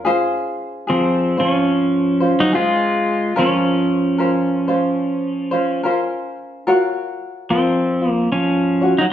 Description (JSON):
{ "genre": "Hawaiian", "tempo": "73 BPM", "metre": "4/4", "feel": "swing 61% on 8ths", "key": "Db major", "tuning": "A4 = 440 Hz", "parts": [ { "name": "tenor ukulele", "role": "accompaniment", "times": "0.0-9.1 s", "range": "Db4 to Db5", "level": "-20 LUFS", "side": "left 1 dB", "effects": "none" }, { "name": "pedal steel guitar", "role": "melody", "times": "0.9-9.1 s", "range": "F3 to F4", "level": "-16 LUFS", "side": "equal", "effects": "none" } ], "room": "moderate large studio reverb, RT60 1.2 s", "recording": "band playing live in one room", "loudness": "-16 LUFS", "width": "side -10 dB against mid", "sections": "0.1-9.1 A section", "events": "none", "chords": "0.1 Dbmaj7; 3.4 Bbmadd9; 6.7 Gbmaj7" }